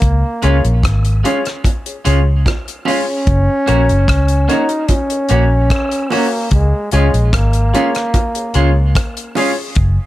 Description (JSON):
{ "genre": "roots reggae", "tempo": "74 BPM", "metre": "4/4", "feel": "straight", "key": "unclear", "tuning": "A4 = 440 Hz", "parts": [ { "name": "clear trombone", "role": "melody", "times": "0.0-9.4 s", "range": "G#3 to D#4", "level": "-19 LUFS", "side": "equal", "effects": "tape echo" }, { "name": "vintage muted fingered electric bass", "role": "bass", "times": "0.0-10.0 s", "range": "F#1 to C#2", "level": "-13 LUFS", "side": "equal", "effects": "none" }, { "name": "damped 70s drum kit", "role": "drums", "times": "0.0-10.0 s", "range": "hi-hat, kick drum, rim click", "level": "-18 LUFS", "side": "equal", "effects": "none" }, { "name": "clean electric guitar", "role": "accompaniment", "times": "0.4-9.5 s", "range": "G#3 to F#4", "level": "-22 LUFS", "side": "right 7 dB", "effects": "tape echo" }, { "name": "warm upright piano", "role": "stabs", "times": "0.4-9.7 s", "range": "E#4 to C#5", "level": "-22 LUFS", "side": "left 5 dB", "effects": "none" }, { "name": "bongos", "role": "percussion", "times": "1.3-9.6 s", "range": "none", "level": "-24 LUFS", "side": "right 6 dB", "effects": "none" } ], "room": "light reverb, small room reverb", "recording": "none", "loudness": "-12 LUFS", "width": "side -15 dB against mid", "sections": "0.0-10.1 A section", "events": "trombone solo 0.0-10.1", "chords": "0.0 C#; 3.3 F#; 6.5 C#", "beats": "| 0.02 0.83 1.65 2.46 | 3.27 4.08 4.90 5.71 | 6.52 7.33 8.14 8.96 | 9.77" }